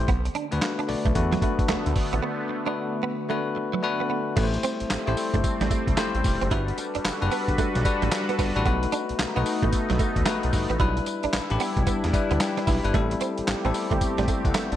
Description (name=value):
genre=R&B, new jack swing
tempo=112 BPM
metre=4/4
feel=swing 64% on 16ths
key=A dorian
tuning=A4 = 440 Hz
part: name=bell-like tine electric piano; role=accompaniment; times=0.0-14.8 s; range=G3 to B5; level=-28 LUFS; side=left 4 dB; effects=none
part: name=fat analog bass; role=bass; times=0.0-14.8 s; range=E1 to E2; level=-27 LUFS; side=equal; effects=none
part: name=sweeping resonant pad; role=sustained chords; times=0.1-14.8 s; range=D3 to B4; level=-32 LUFS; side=right 1 dB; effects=chorus
part: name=direct-recorded clean electric guitar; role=riff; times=0.1-14.6 s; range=F#3 to E4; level=-32 LUFS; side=right 7 dB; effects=ensemble chorus
part: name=dusty soul sampler-style drum kit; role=drums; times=0.1-14.8 s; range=crash cymbal, handclaps, hi-hat, kick drum, snare drum, tambourine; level=-27 LUFS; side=equal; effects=gated reverb
room=light reverb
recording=bright 1980s-style digital production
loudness=-22 LUFS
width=side -12 dB against mid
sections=0.0-4.4 A section; 4.4-14.8 B section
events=break 2.2-4.4; tine electric piano fill 11.9-12.9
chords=0.1 Bm7; 4.4 Am7; 6.5 Gmaj7; 8.7 B7; 10.8 Em7; 12.9 Am7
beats=| 0.08 0.62 1.15 1.69 | 2.23 2.76 3.30 3.83 | 4.37 4.90 5.44 5.97 | 6.51 7.05 7.58 8.12 | 8.65 9.19 9.72 10.26 | 10.80 11.33 11.87 12.40 | 12.94 13.47 14.01 14.55